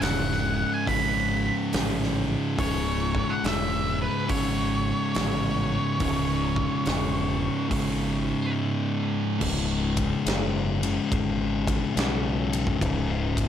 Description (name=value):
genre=stoner and doom metal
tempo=70 BPM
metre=4/4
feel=swing 66% on 8ths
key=C# minor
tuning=A4 = 442 Hz
part: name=octave-fuzz lead guitar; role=melody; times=0.0-8.5 s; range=B4 to B5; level=-31 LUFS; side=equal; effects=distortion, tape echo
part: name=thick fuzz guitar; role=riff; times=0.0-13.5 s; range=C#2 to C#3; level=-27 LUFS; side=left 5 dB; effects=distortion
part: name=thick fuzz guitar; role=riff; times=0.0-9.4 s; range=C#2 to C#3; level=-30 LUFS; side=right 9 dB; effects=distortion
part: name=growling fingered electric bass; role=bass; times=0.0-13.5 s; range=C#1 to B1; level=-30 LUFS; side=equal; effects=overdrive
part: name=big rock drum kit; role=drums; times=0.0-13.5 s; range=crash cymbal, hi-hat, kick drum, ride cymbal, snare drum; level=-30 LUFS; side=equal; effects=none
room=light reverb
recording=none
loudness=-23 LUFS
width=side -9 dB against mid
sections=0.0-9.4 A section; 9.4-13.5 B section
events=none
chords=0.0 C#m; 9.4 C#5